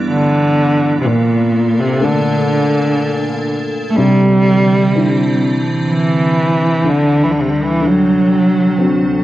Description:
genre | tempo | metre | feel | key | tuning
celtic folk, Celtic slow air | 62 BPM | 3/4 | rubato | unclear | A4 = 440 Hz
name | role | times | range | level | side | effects
dark upright piano | accompaniment | 0.0-9.2 s | G2 to F#4 | -17 LUFS | left 2 dB | none
icy glass pad | sustained chords | 0.0-9.2 s | D2 to A4 | -20 LUFS | right 1 dB | chorus, built-in reverb
rich cello | melody | 0.1-9.2 s | Bb2 to A3 | -14 LUFS | right 1 dB | none
room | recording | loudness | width
light reverb | worn, warbling old tape, cassette tape, warbly pitch drift | -11 LUFS | side -15 dB against mid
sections
0.0-9.2 A section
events
none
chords
0.0 G6; 1.1 Bbmaj7; 4.0 Cadd9; 6.8 D7sus4; 7.8 D7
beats
0.09 | 1.06 2.02 3.00 | 3.99 4.95 5.88 | 6.84 7.80 8.79

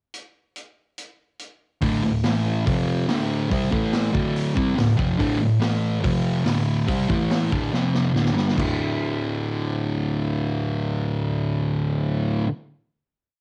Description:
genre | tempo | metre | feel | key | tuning
garage rock duo or trio | 142 BPM | 4/4 | straight | D minor | A4 = 440 Hz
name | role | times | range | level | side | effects
vintage drum kit | drums | 0.1-8.7 s | crash cymbal, hi-hat, kick drum, snare drum, toms | -29 LUFS | equal | cassette tape
fuzz guitar | riff | 1.8-12.5 s | D2 to C4 | -24 LUFS | equal | distortion, cassette tape
room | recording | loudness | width
light reverb | home recording on cassette | -23 LUFS | mono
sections
0.1-1.8 pickup bar; 1.8-8.6 riff; 8.6-11.9 final chord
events
drum fill 7.7-8.6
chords
0.1 N.C.; 1.8 D5; 2.2 A5; 2.7 F5; 3.1 D5; 3.7 A5; 4.1 Dm; 5.6 A5; 6.0 F5; 6.5 D5; 7.1 A5; 7.5 D5; 7.7 F5; 8.1 D5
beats
| 0.14 0.56 0.98 1.40 | 1.82 2.25 2.67 3.09 | 3.52 3.94 4.36 4.78 | 5.20 5.62 6.05 6.47 | 6.89 7.31 7.73 8.14 | 8.56 8.98 9.40 9.82 | 10.24 10.66 11.07 11.49

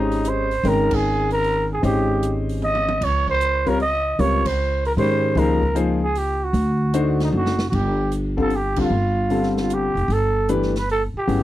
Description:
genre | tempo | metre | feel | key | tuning
modal jazz | 152 BPM | 3/4 | swing 66% on 8ths | Ab major, G mixolydian from 7.7 s | A4 = 441 Hz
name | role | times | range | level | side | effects
growling trumpet | melody | 0.0-11.4 s | Eb4 to Eb5 | -22 LUFS | right 2 dB | none
clear concert grand piano | accompaniment | 0.0-11.4 s | C#3 to G5 | -22 LUFS | left 3 dB | none
upright bass | bass | 0.0-11.4 s | F1 to Ab2 | -23 LUFS | equal | none
swinging big-band drum kit | drums | 0.1-11.4 s | crash cymbal, hi-hat, kick drum, snare drum, toms | -32 LUFS | right 1 dB | none
room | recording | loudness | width
little or no reverb | dry, close 1970s-style studio recording | -18 LUFS | side -14 dB against mid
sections
0.0-7.7 A section; 7.7-11.4 B section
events
band accent 0.8, 4.4, 8.7; drum fill 2.6-3.0, 7.3-7.7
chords
0.0 Abmaj9; 3.0 Dbmaj9; 6.5 D7b9; 7.7 G9sus4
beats
0.26 | 0.65 1.04 1.44 | 1.83 2.22 2.62 | 3.01 3.40 3.80 | 4.19 4.58 4.97 | 5.37 5.76 6.16 | 6.55 6.94 7.33 | 7.73 8.12 8.52 | 8.91 9.30 9.70 | 10.09 10.49 10.88 | 11.27

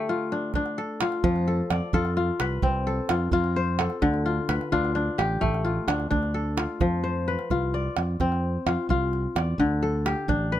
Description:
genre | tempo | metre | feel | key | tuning
west african traditional, West African string and xylophone music | 86 BPM (dotted quarters) | 12/8 | straight | F lydian | A4 = 440 Hz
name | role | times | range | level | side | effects
kora | arpeggios | 0.0-10.6 s | D3 to D5 | -26 LUFS | left 2 dB | none
calabash | percussion | 0.5-10.4 s | none | -29 LUFS | right 4 dB | none
modern bright fingered electric bass | bass | 1.2-10.6 s | A1 to F2 | -27 LUFS | right 1 dB | none
room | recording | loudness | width
light reverb | close, detailed microphones | -23 LUFS | side -12 dB against mid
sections
0.0-6.8 A section; 6.8-10.6 B section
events
none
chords
0.0 Dm; 1.2 F; 4.0 Dm; 6.8 F; 9.6 D5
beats
0.55 | 1.24 1.94 2.63 3.33 | 4.02 4.71 5.41 6.11 | 6.80 7.50 8.20 8.89 | 9.59 10.29

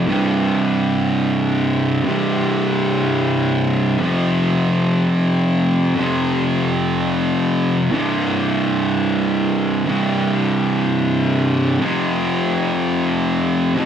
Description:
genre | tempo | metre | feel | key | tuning
rock | 61 BPM (dotted quarters) | 6/8 | straight | unclear | A4 = 440 Hz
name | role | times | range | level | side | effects
fuzz guitar | solo | 0.0-13.9 s | C2 to F3 | -16 LUFS | equal | distortion
room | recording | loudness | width
wet small room reverb, RT60 0.5 s | none | -16 LUFS | side -8 dB against mid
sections
0.1-13.9 A section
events
none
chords
0.1 C5; 4.0 F5; 7.9 C5; 11.8 F5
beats
| 0.09 1.07 | 2.05 3.03 | 4.01 4.99 | 5.96 6.94 | 7.92 8.89 | 9.87 10.85 | 11.82 12.79 | 13.77

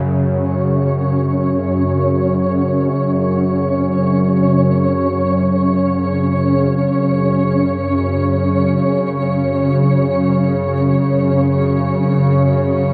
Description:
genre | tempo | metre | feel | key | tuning
dark ambient drone | free time | none | none | unclear | A4 = 440 Hz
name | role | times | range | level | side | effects
bowed-like drone | drone | 0.0-12.9 s | F#2 to C#3 | -17 LUFS | equal | built-in reverb
flickering grainy texture | texture | 0.3-12.9 s | C#4 to C#5 | -22 LUFS | equal | built-in reverb, shimmer reverb
room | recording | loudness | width
wet huge ambient reverb, RT60 8.4 s | in a vast, echoing space, faint mains hum | -16 LUFS | mono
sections
0.1-12.9 A section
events
none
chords
0.1 F#5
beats
free time

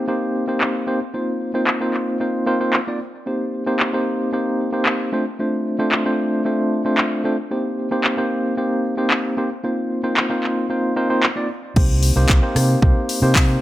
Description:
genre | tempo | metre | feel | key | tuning
nu-disco, nu disco | 113 BPM | 4/4 | straight | unclear | A4 = 440 Hz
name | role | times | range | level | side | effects
tine electric piano | accompaniment | 0.0-13.6 s | A3 to D5 | -20 LUFS | equal | medium tremolo, sidechain pumping, tape echo
house drum kit | drums | 0.6-13.5 s | crash cymbal, handclaps, hi-hat, rim click | -21 LUFS | equal | overdrive, low-pass filter on snare, low-pass filter on cymbals, low-pass filter on hats
fingered electric bass with an envelope filter | bass | 11.8-13.6 s | C2 to C3 | -17 LUFS | equal | none
electronic kick drum | drums | 11.8-13.5 s | none | -16 LUFS | equal | overdrive
room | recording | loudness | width
light reverb, digital ambience | none | -17 LUFS | side -15 dB against mid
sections
0.0-11.8 A section; 11.8-13.6 B section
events
drop 11.8-13.6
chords
0.0 Eb6; 1.1 F7sus4; 3.3 Cm7; 5.1 Dm7; 7.5 Eb6; 9.6 F7sus4; 11.8 Cm7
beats
0.08 0.61 | 1.14 1.67 2.20 2.73 | 3.27 3.80 4.33 4.86 | 5.39 5.92 6.45 6.98 | 7.51 8.04 8.57 9.11 | 9.64 10.17 10.70 11.23 | 11.76 12.29 12.82 13.35

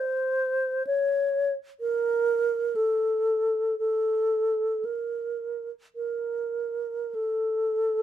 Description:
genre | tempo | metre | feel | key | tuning
classical, free, expressive piece for unaccompanied alto flute | 44-66 BPM | 3/4 | rubato | unclear | A4 = 440 Hz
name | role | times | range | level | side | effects
alto flute | solo | 0.0-8.0 s | A4 to Db5 | -24 LUFS | equal | none
room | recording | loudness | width
little or no reverb | minimal, uncompressed stereo recording | -24 LUFS | side -10 dB against mid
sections
0.0-7.2 A section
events
none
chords
none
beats
| 0.88 1.82 2.77 | 3.79 4.86 5.96 | 7.16

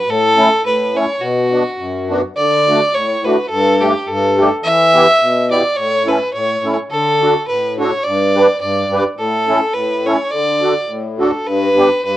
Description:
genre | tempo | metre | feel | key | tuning
alpine folk, alpine dance band | 106 BPM | 2/4 | swing 55% on 8ths, rubato | D major | A4 = 441 Hz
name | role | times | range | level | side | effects
rich fiddle | melody | 0.0-12.2 s | F#4 to E5 | -15 LUFS | right 1 dB | none
musette accordion | accompaniment | 0.1-12.2 s | F#2 to B4 | -16 LUFS | left 1 dB | none
room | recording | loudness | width
moderate studio reverb, RT60 0.6 s | worn, warbling old tape, cassette tape, warbly pitch drift | -12 LUFS | side -14 dB against mid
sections
0.0-11.5 A section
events
none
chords
0.1 A; 1.2 Bm; 2.4 D; 3.5 Gsus2; 4.6 Em; 5.8 A; 6.9 D; 8.1 G; 9.2 A; 10.3 D; 11.5 G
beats
| 0.07 0.63 | 1.19 1.77 | 2.36 2.94 | 3.51 4.07 | 4.64 5.20 | 5.77 6.34 | 6.91 7.49 | 8.05 8.61 | 9.18 9.74 | 10.31 10.88 | 11.46 12.04

